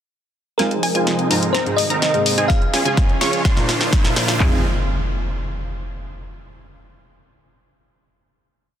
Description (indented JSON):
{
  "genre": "EDM, festival progressive house",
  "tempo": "126 BPM",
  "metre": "4/4",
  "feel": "straight",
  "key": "F minor",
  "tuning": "A4 = 436 Hz",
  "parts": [
    { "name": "bell-like FM electric piano", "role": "melody", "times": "0.6-2.9 s", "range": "Bb4 to F5", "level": "-24 LUFS", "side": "left 2 dB", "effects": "chorus, phaser, dub echo" },
    { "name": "dark baby grand piano", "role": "accompaniment", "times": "0.6-4.6 s", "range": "Ab2 to Bb4", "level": "-26 LUFS", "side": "right 2 dB", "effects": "sidechain pumping, dub echo" },
    { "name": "lush unison pad", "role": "sustained chords", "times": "0.6-4.6 s", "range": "C3 to F4", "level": "-29 LUFS", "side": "equal", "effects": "chorus, sidechain pumping" },
    { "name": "wide unison pluck", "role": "arpeggios", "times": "0.6-4.6 s", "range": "Ab5 to Db6", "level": "-27 LUFS", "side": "right 1 dB", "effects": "sidechain pumping, dub echo" },
    { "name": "supersaw chords", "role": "riff", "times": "0.6-4.6 s", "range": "F3 to Db5", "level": "-24 LUFS", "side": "right 1 dB", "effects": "sidechain pumping, low-pass filter, dub echo" },
    { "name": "fat analog bass", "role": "bass", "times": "0.6-4.6 s", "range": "F1 to Ab2", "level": "-30 LUFS", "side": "equal", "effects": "none" },
    { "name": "house drum kit", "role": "drums", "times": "0.6-4.4 s", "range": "hi-hat, snare drum", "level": "-23 LUFS", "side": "left 1 dB", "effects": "high-pass filter on snare, small room reverb, high-pass filter on hats" },
    { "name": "riser and impact", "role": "sound effects", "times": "1.8-6.3 s", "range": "none", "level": "-26 LUFS", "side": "equal", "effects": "none" },
    { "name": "house drum kit", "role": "drums", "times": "2.5-4.5 s", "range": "handclaps, kick drum", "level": "-17 LUFS", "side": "equal", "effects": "small room reverb" }
  ],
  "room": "light reverb",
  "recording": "dense, heavily limited modern master",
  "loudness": "-16 LUFS",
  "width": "side -9 dB against mid",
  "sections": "0.6-4.4 build; 4.4-6.3 final chord",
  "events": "build-up 0.6-4.4; drum fill 0.6-4.4; filter sweep on supersaw synth 0.6-4.4; riser 1.8-4.4",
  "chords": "0.6 Fm7; 1.5 Ab; 2.5 Db; 3.5 Bb; 4.4 Fm7"
}